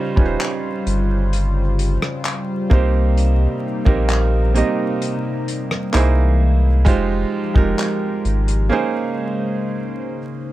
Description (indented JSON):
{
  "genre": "contemporary R&B",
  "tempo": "65 BPM",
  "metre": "4/4",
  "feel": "straight",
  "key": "unclear",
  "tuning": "A4 = 436 Hz",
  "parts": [
    { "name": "felt-muted upright piano", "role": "accompaniment", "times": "0.0-10.5 s", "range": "G3 to Eb5", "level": "-22 LUFS", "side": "right 5 dB", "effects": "none" },
    { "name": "warm analog pad", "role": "sustained chords", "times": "0.0-10.5 s", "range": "C3 to C5", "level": "-26 LUFS", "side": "left 3 dB", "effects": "chorus" },
    { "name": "saturated sub bass", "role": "bass", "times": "0.2-8.7 s", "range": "Eb1 to C2", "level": "-17 LUFS", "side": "equal", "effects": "none" },
    { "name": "warm soul drum kit", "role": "drums", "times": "0.2-8.7 s", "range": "handclaps, hi-hat, kick drum, rim click", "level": "-18 LUFS", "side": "equal", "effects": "vintage 12-bit sampler grit" }
  ],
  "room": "little or no reverb",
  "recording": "dark, warm production, vinyl crackle",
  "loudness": "-16 LUFS",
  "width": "side -15 dB against mid",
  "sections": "0.0-10.5 A section",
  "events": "break 8.7-10.5",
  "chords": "0.0 Eb13; 2.7 Cm7; 5.9 C7alt; 6.9 Fm9; 8.7 Bbm11",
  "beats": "0.40 1.33 2.25 | 3.17 4.09 5.02 5.94 | 6.87 7.79 8.71 9.63"
}